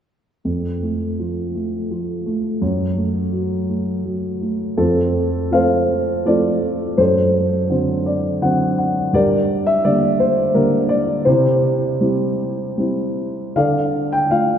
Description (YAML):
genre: classical, lyrical solo piano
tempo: 76-86 BPM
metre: 3/4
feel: rubato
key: F major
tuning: A4 = 440 Hz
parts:
  - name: dark grand piano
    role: solo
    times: 0.4-14.6 s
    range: F2 to G5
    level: -16 LUFS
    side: equal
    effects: none
room: wet church reverb, RT60 3.4 s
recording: recorded in a church or concert hall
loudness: -16 LUFS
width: side -8 dB against mid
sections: 0.4-4.8 A section; 4.8-14.6 B section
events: grand piano fill 7.7-9.1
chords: 0.4 F; 2.6 Gbm; 4.8 F; 7.0 D7/F#; 9.1 Gm; 11.3 C; 13.6 Dm